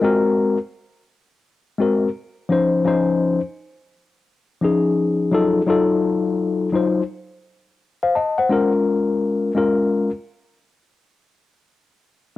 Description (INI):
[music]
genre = hip hop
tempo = 85 BPM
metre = 4/4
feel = swing 64% on 16ths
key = Bb minor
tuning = A4 = 440 Hz
[part]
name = mellow tine electric piano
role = solo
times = 0.0-10.1 s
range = F3 to A5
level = -17 LUFS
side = left 3 dB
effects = medium stereo tremolo, cassette tape
[sound]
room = light reverb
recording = home recording on cassette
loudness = -17 LUFS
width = side -15 dB against mid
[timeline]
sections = 0.0-8.5 A section; 8.5-12.4 B section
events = none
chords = 0.0 Ab9; 2.9 Dbmaj9; 5.7 F7b9; 8.5 Bbm7; 11.3 N.C.